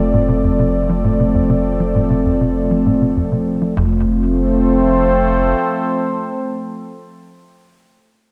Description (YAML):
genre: ambient, sequencer-driven space music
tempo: 99 BPM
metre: 4/4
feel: straight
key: F major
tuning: A4 = 442 Hz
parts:
  - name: sweeping resonant pad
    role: sustained chords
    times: 0.0-7.0 s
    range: F3 to D5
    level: -18 LUFS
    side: equal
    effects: chorus
  - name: tight sequencer bass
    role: riff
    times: 0.0-4.0 s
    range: F2 to F3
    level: -21 LUFS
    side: equal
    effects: ensemble chorus, delay
  - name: warm sub bass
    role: bass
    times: 0.0-5.5 s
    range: F1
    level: -24 LUFS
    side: equal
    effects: none
room: wet spring reverb, RT60 2.8 s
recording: echo-heavy mix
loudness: -16 LUFS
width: mono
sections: 0.0-3.8 A section; 3.8-6.2 B section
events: filter sweep on analog synth bass 0.0-3.8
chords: 0.0 F